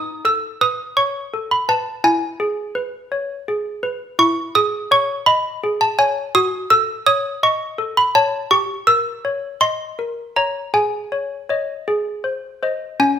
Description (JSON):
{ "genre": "classical, lullaby for handbells", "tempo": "56 BPM (dotted quarters)", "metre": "6/8", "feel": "straight", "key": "E major, C# minor from 4.2 s", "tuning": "A4 = 441 Hz", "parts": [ { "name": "malleted handbells", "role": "solo", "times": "0.0-13.2 s", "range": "C#4 to E6", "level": "-16 LUFS", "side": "equal", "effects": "none" } ], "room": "moderate large studio reverb, RT60 1.1 s", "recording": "band playing live in one room", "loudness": "-17 LUFS", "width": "side -9 dB against mid", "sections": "0.0-13.0 A section", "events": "none", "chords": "0.0 B7/D#; 2.0 E; 4.2 C#m/E; 6.3 D#m7b5/F#; 8.5 Gdim7; 10.7 G#sus4; 11.9 G#", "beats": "0.97 | 2.05 3.12 | 4.20 5.28 | 6.35 7.42 | 8.51 9.62 | 10.74 11.87 | 13.00" }